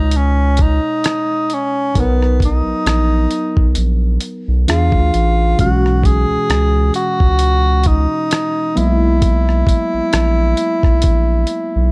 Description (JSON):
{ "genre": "R&B, neo-soul", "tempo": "66 BPM", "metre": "4/4", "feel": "swing 55% on 16ths", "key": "B major", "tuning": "A4 = 442 Hz", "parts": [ { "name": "breathy tenor saxophone", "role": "melody", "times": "0.0-11.9 s", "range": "B3 to G#4", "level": "-20 LUFS", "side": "equal", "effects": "none" }, { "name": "tine electric piano", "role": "accompaniment", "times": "0.0-11.9 s", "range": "A#2 to D#5", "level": "-24 LUFS", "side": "equal", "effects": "none" }, { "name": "round analog bass", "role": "bass", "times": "0.0-11.9 s", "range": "A1 to E2", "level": "-17 LUFS", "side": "equal", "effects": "none" }, { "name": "dusty soul sampler-style drum kit", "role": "drums", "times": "0.1-11.7 s", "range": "hi-hat, kick drum, rim click", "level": "-18 LUFS", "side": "equal", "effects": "none" } ], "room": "little or no reverb", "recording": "dark, warm production", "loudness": "-15 LUFS", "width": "mono", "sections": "0.0-11.9 A section", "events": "none", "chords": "0.0 B69; 1.9 Bmaj7/A#; 4.7 E7b9; 5.6 Emaj13/B; 8.8 F#13", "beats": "0.13 1.03 | 1.94 2.85 3.76 4.67 | 5.58 6.49 7.40 8.31 | 9.22 10.13 11.04" }